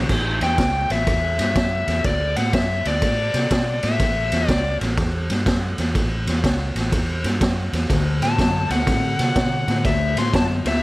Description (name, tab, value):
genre	electric blues shuffle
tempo	123 BPM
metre	4/4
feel	swing 65% on 8ths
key	A mixolydian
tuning	A4 = 441 Hz
part	crunchy overdriven guitar	riff	0.0-0.1, 7.9-10.8 s	D3 to C4	-24 LUFS	left 3 dB	none
part	vintage muted fingered electric bass	bass	0.0-10.8 s	A1 to C3	-24 LUFS	equal	none
part	raw garage drum kit	drums	0.1-10.7 s	crash cymbal, kick drum, ride cymbal, snare drum	-21 LUFS	equal	none
part	smooth overdriven lead guitar	melody	0.4-4.8, 8.2-10.8 s	D5 to C6	-23 LUFS	left 2 dB	none
room	light reverb, studio reverb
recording	none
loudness	-18 LUFS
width	side -19 dB against mid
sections	0.1-10.8 A section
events	none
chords	0.1 A7; 2.0 D; 4.0 A; 7.9 D7